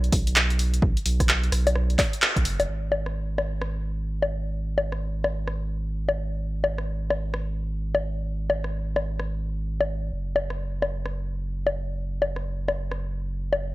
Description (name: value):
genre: UK garage, two-step garage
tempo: 129 BPM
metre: 4/4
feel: swing 62% on 16ths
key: unclear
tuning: A4 = 438 Hz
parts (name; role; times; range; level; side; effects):
- saturated sub bass; bass; 0.0-13.7 s; F#1 to B1; -27 LUFS; equal; tube saturation, sidechain pumping
- punchy analog drum machine; drums; 0.0-13.6 s; bongos, handclaps, hi-hat, rim click; -25 LUFS; left 2 dB; none
- electronic kick drum; drums; 0.1-2.4 s; none; -23 LUFS; equal; none
room: light reverb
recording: dry, gritty hardware recording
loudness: -24 LUFS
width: side -18 dB against mid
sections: 0.0-2.7 A section; 2.7-13.7 B section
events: band accent 2.2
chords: none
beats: 0.36 | 0.82 1.29 1.75 2.22 | 2.68 3.15 3.61 4.08 | 4.54 5.01 5.47 5.94 | 6.41 6.87 7.33 7.80 | 8.27 8.73 9.20 9.66 | 10.13 10.59 11.06 11.52 | 11.99 12.45 12.92 13.38